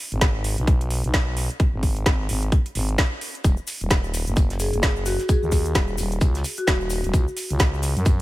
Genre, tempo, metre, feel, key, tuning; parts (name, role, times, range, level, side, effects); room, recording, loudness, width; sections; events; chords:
bass house; 130 BPM; 4/4; swing 59% on 16ths; Eb minor; A4 = 440 Hz
growling FM bass; bass; 0.1-8.2 s; Eb1 to Gb2; -25 LUFS; equal; overdrive, sidechain pumping
garage drum kit; drums; 0.1-8.2 s; hi-hat, snare drum; -26 LUFS; equal; overdrive, small room ambience
electronic kick drum; drums; 0.2-8.2 s; -19 LUFS; equal; small room ambience
shaker and snare drum; drums; 3.4-8.2 s; -39 LUFS; left 1 dB
cabasa; percussion; 3.4-8.2 s; -38 LUFS; left 6 dB
marimba with medium hard mallets; melody; 4.6-6.8 s; Gb4 to Ab4; -28 LUFS; left 1 dB; vintage 12-bit sampler grit, ping-pong delay
little or no reverb; -20 LUFS; side -17 dB against mid
0.0-8.2 A section
0.0 Abm; 3.4 Ebm; 7.1 Dbsus4